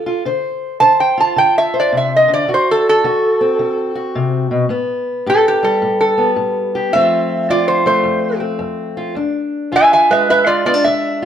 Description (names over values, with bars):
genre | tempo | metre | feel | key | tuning
acoustic country blues, solo or duo | 108 BPM | 4/4 | swing 66% on 8ths | A minor | A4 = 440 Hz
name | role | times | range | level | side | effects
metal-body resonator slide guitar | melody | 0.0-11.2 s | F4 to A5 | -13 LUFS | right 1 dB | none
fingerpicked steel-string acoustic guitar | accompaniment | 0.0-11.2 s | E2 to C5 | -18 LUFS | left 2 dB | none
room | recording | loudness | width
moderate stone room reverb, RT60 1.0 s | band playing live in one room | -12 LUFS | side -9 dB against mid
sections
0.0-11.2 A section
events
resonator guitar played with a steel bar solo 0.0-11.2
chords
0.0 Dm7; 2.5 D#dim7; 4.7 Asus2; 6.9 F; 9.2 E7b9